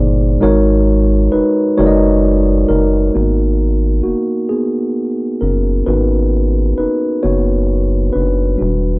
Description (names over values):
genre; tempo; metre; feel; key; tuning
slow six-eight R&B; 44 BPM (dotted quarters); 6/8; straight; G# minor; A4 = 440 Hz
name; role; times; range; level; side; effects
mellow tine electric piano; accompaniment; 0.0-9.0 s; A#2 to D#5; -14 LUFS; equal; none
rubbery square bass; bass; 0.0-9.0 s; E1 to G#1; -15 LUFS; equal; none
room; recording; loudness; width
little or no reverb; dry, gritty hardware recording; -12 LUFS; side -24 dB against mid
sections
0.0-3.1 A section; 3.1-9.0 B section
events
tine electric piano solo 3.1-9.0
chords
0.4 G#9sus4